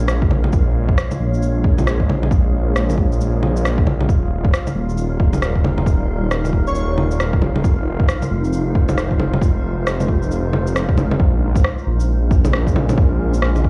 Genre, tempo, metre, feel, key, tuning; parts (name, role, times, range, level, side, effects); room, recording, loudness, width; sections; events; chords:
future garage; 135 BPM; 4/4; swing 61% on 16ths; Bb dorian; A4 = 439 Hz
granular cloud pad; sustained chords; 0.0-13.7 s; G3 to Db5; -30 LUFS; equal; built-in reverb, sidechain pumping
swelling detuned saw bass; bass; 0.0-13.7 s; Eb1 to Bb1; -22 LUFS; equal; sidechain pumping
wind-like tuned noise texture; texture; 0.0-13.7 s; F4 to F5; -36 LUFS; equal; built-in reverb
electronic rim click, shaker and bongos; drums; 0.1-13.6 s; -24 LUFS; equal; vintage 12-bit sampler grit
electronic kick drum; drums; 0.2-13.7 s; -19 LUFS; equal; vintage 12-bit sampler grit
airy dreamy lead; melody; 6.7-6.9 s; Db5; -29 LUFS; equal; chorus, analog delay
little or no reverb; played on a big sound system in a bare room, cassette tape, large studio reverb; -18 LUFS; mono
0.0-11.2 A section; 11.2-13.7 B section
0.0 Bbm7; 4.1 Ebadd9; 7.6 Fm7; 11.2 Bbm7